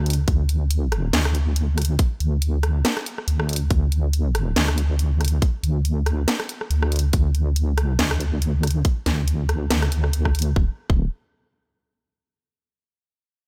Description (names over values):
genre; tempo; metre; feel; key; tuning
deep dubstep; 140 BPM; 4/4; swing 56% on 16ths, half-time; unclear; A4 = 440 Hz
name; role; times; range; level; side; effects
deep soft wobble bass; bass; 0.0-11.1 s; D1 to D2; -22 LUFS; equal; chorus
garage drum kit; drums; 0.1-10.5 s; hi-hat, rim click, snare drum; -28 LUFS; equal; small room ambience
electronic kick drum; drums; 0.3-11.0 s; none; -22 LUFS; equal; small room ambience
room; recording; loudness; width
digital ambience; none; -22 LUFS; mono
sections
0.0-10.6 A section; 10.6-12.3 B section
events
none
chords
none